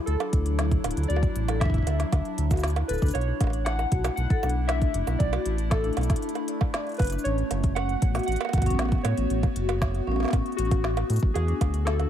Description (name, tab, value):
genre	IDM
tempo	117 BPM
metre	4/4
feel	straight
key	D major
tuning	A4 = 440 Hz
part	warbly lo-fi synth keys	melody	0.0-12.1 s	F#4 to F#5	-33 LUFS	equal	chorus, ping-pong delay
part	warbly tape-like pad	sustained chords	0.0-12.1 s	D3 to F#4	-33 LUFS	left 1 dB	chorus, built-in reverb, phaser
part	vibraphone with soft mallets	arpeggios	0.1-12.1 s	C#4 to D5	-34 LUFS	left 5 dB	vintage 12-bit sampler grit, dub echo
part	round analog bass	bass	0.1-12.1 s	D1 to A2	-26 LUFS	equal	none
part	organic electronic drum kit	drums	0.1-12.1 s	bongos, hi-hat, shaker, snare drum	-33 LUFS	right 4 dB	none
part	electronic kick drum	drums	0.3-11.7 s	none	-24 LUFS	equal	none
room	little or no reverb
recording	none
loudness	-23 LUFS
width	side -10 dB against mid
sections	0.0-12.1 A section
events	none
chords	0.0 Dadd9; 3.1 Bm11; 7.3 A69; 11.4 E9sus4